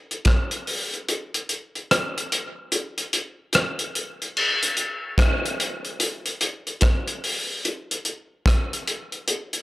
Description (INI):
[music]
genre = reggae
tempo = 73 BPM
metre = 4/4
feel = swing 64% on 16ths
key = none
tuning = none
[part]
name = cloth-damped thuddy drum kit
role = drums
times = 0.1-9.6 s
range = crash cymbal, hi-hat, kick drum, rim click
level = -21 LUFS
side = equal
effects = none
[sound]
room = moderate spring reverb, RT60 2.5 s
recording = none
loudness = -22 LUFS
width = side -18 dB against mid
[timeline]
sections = 0.0-4.4 A section; 4.4-9.6 B section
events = kick muted 1.1-4.4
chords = none